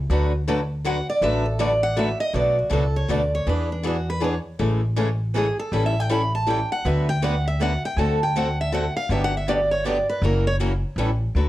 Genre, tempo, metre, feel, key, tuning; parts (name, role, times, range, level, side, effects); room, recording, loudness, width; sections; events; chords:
acoustic string swing (jazz manouche); 160 BPM; 3/4; swing 61% on 8ths; A4 = 440 Hz
upright bass; bass; 0.0-11.5 s; F#1 to E2; -24 LUFS; equal
picked steel-string acoustic guitar; accompaniment; 0.1-11.5 s; B2 to B4; -27 LUFS; left 4 dB
picked swing-style acoustic guitar; accompaniment; 0.1-11.1 s; B2 to B4; -30 LUFS; right 5 dB
picked steel-string acoustic guitar; melody; 0.9-10.6 s; D4 to B5; -24 LUFS; right 1 dB
light reverb; worn, warbling old tape, cassette tape, warbly pitch drift; -20 LUFS; side -15 dB against mid
0.0-2.4 A section; 2.4-11.4 A section
steel-string acoustic guitar solo 0.0-11.4
0.1 D6; 2.4 Bm9; 3.5 E7; 4.6 Amaj7; 5.7 A7; 6.9 D6; 8.0 D7; 9.1 Gmaj7; 10.2 F#7; 11.0 A7